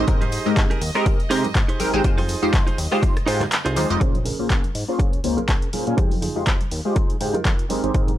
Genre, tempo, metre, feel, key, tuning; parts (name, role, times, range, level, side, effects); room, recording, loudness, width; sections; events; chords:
filtered disco house; 122 BPM; 4/4; swing 56% on 16ths; F minor; A4 = 444 Hz
funky polysynth comp; accompaniment; 0.0-8.1 s; Ab3 to Eb5; -23 LUFS; equal; chorus, phaser, sidechain pumping, low-pass filter
rich studio violin section; sustained chords; 0.0-4.0 s; Eb5; -35 LUFS; right 1 dB; sidechain pumping, low-pass filter
direct-recorded clean electric guitar; riff; 0.0-8.1 s; C4 to Db5; -28 LUFS; right 4 dB; sidechain pumping, low-pass filter
fat analog bass; bass; 0.0-8.2 s; F1 to C3; -27 LUFS; equal; tube saturation, sidechain pumping, low-pass filter
electronic kick drum; drums; 0.1-8.1 s; -20 LUFS; equal
punchy analog drum machine; drums; 0.1-8.2 s; handclaps, hi-hat, rim click; -27 LUFS; equal; sidechain pumping on hats
tambourine and congas; percussion; 0.1-8.2 s; -36 LUFS; right 3 dB; sidechain pumping on perc, low-pass filter on perc
little or no reverb; dry, gritty hardware recording; -18 LUFS; side -13 dB against mid
0.0-4.0 A section; 4.0-8.2 B section
drop 0.0-4.0; kick drops out 3.5-4.0; filter sweep 4.0-8.2
0.0 Abmaj7; 2.0 Fm7; 4.0 Bbm7; 6.0 Fm7